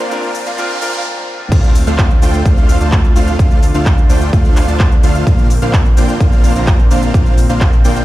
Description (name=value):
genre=EDM, festival progressive house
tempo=128 BPM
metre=4/4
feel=straight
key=D minor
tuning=A4 = 441 Hz
part: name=clear concert grand piano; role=accompaniment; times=0.0-1.5 s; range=Bb2 to Bb4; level=-24 LUFS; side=left 1 dB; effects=sidechain pumping, ping-pong delay
part: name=lush unison pad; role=sustained chords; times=0.0-8.0 s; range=Bb2 to F4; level=-24 LUFS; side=right 1 dB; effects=chorus, sidechain pumping
part: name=dense compressed supersaw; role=riff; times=0.0-8.0 s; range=A3 to Bb5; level=-19 LUFS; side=right 1 dB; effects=sidechain pumping, ping-pong delay
part: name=big-room dance drum kit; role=drums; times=0.0-8.0 s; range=crash cymbal, handclaps, hi-hat, shaker, toms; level=-24 LUFS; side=equal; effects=overdrive
part: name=riser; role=sound effects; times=0.0-1.0 s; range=none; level=-27 LUFS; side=right 2 dB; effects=none
part: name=fat analog bass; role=bass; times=1.5-8.0 s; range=Bb1 to D2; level=-16 LUFS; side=equal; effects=sidechain pumping
part: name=electronic kick drum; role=drums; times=1.5-7.7 s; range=none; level=-10 LUFS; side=equal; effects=overdrive
room=digital ambience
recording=played on a big sound system in a bare room, stone room reverb, high-pass filter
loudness=-10 LUFS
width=side -16 dB against mid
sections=0.0-1.5 A section; 1.5-8.0 B section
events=build-up 0.0-1.5; riser 0.0-1.0; break 1.0-1.5; drum fill 1.0-1.5; drop 1.5-8.0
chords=0.0 Bbadd9; 1.5 Dm7; 5.3 Bbadd9